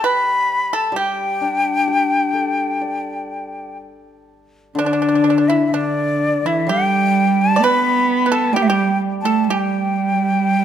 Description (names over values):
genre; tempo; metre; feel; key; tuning
chinese traditional, Chinese chamber ensemble; 64 BPM; 4/4; rubato; G gong mode; A4 = 440 Hz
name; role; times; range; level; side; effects
breathy jazz flute; melody; 0.0-10.6 s; D5 to B5; -19 LUFS; left 2 dB; none
pipa; second line; 0.0-10.6 s; D4 to D5; -23 LUFS; right 5 dB; none
hammered dulcimer; accompaniment; 0.0-10.6 s; D3 to D5; -23 LUFS; left 5 dB; none
dark cello; second line; 4.8-10.6 s; D3 to B3; -19 LUFS; right 6 dB; none
room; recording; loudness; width
light reverb; close, detailed microphones, faint mains hum; -15 LUFS; side -9 dB against mid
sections
0.0-4.8 A section; 4.8-10.6 B section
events
none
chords
none